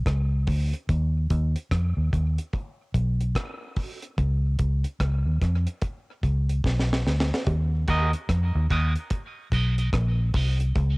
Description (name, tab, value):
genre	dub reggae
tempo	73 BPM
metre	4/4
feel	swing 62% on 16ths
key	Eb minor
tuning	A4 = 439 Hz
part	vintage muted fingered electric bass	bass	0.0-11.0 s	Bb1 to F2	-22 LUFS	equal	tube saturation
part	deep reggae drum kit	drums	0.1-11.0 s	hi-hat, kick drum, rim click, snare drum	-28 LUFS	equal	cassette tape
part	bongos	percussion	7.5-11.0 s	none	-41 LUFS	right 3 dB	high-pass filter on perc, tape echo
part	electric guitar at the edge of break-up	accompaniment	7.9-10.6 s	Gb4 to Eb5	-30 LUFS	right 2 dB	high-pass filter, cassette tape, tape echo
room	studio reverb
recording	home recording on cassette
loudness	-23 LUFS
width	side -27 dB against mid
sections	0.0-7.5 A section; 7.5-11.0 B section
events	break 0.0-7.5; drum fill 6.7-7.5; part muted 10.8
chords	0.0 N.C.; 0.9 B; 4.2 N.C.; 7.5 Ebm